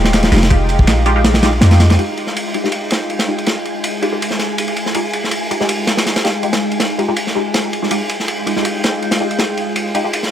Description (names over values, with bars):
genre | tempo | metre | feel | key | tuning
drum and bass, jungle | 162 BPM | 4/4 | swing 54% on 16ths | F minor | A4 = 440 Hz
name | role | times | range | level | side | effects
lush unison pad | sustained chords | 0.0-10.3 s | Ab3 to G5 | -22 LUFS | equal | chorus
filtered dub chord stab | stabs | 0.0-10.1 s | Ab3 to G4 | -22 LUFS | left 1 dB | phaser, ensemble chorus, cassette tape, dub echo
warm 808-style bass | bass | 0.0-2.0 s | Eb1 to F2 | -13 LUFS | equal | none
crunchy breakbeat drum kit | drums | 0.0-10.3 s | kick drum, ride cymbal, snare drum | -17 LUFS | equal | high-pass filter on kick, high-pass filter on cymbals, high-pass filter on snare, high-pass filter on room
dusty soul sampler-style drum kit | drums | 0.0-2.0 s | hi-hat, snare drum | -27 LUFS | right 2 dB | none
wind-like tuned noise texture | texture | 0.4-10.3 s | Ab3 to Bb5 | -26 LUFS | left 1 dB | built-in reverb
room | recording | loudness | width
light reverb, small room ambience | none | -13 LUFS | side -10 dB against mid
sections
0.0-2.0 A section; 2.0-10.3 B section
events
kick drops out 1.2-2.0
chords
0.0 Fm9